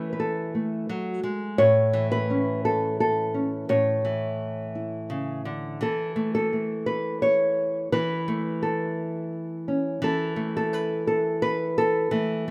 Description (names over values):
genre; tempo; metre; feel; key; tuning
folk, solo fingerstyle acoustic guitar; 86 BPM; 3/4; straight; unclear; A4 = 440 Hz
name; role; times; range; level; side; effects
nylon-string guitar; solo; 0.0-12.5 s; A2 to C#5; -26 LUFS; equal; none
room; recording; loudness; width
light reverb; rough home demo mix; -26 LUFS; mono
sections
0.0-12.5 A section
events
none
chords
0.0 Esus4; 1.6 A; 5.8 Esus4